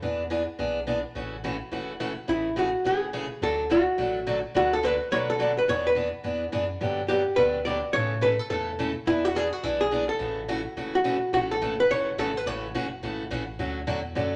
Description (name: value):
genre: country, western swing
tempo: 212 BPM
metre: 4/4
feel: swing 62% on 8ths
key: A major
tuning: A4 = 440 Hz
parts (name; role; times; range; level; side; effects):
- picked steel-string acoustic guitar; accompaniment; 0.0-14.4 s; C#3 to B4; -32 LUFS; equal; none
- punchy sub bass; bass; 0.0-14.4 s; E1 to B2; -40 LUFS; equal; none
- archtop guitar, miked and amplified; melody; 2.3-12.8 s; E4 to D5; -27 LUFS; equal; none
room: moderate large studio reverb, RT60 1.1 s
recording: none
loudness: -27 LUFS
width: mono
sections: 0.0-2.3 A section; 2.3-11.3 A section; 11.3-14.4 B section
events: none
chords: 0.0 E7; 1.2 A6; 2.3 Amaj7; 3.4 D; 4.6 Bm7/D; 5.7 E7; 6.8 Gmaj7; 7.9 A; 9.1 E7; 10.2 A6; 11.3 F#m9; 13.6 Dmaj7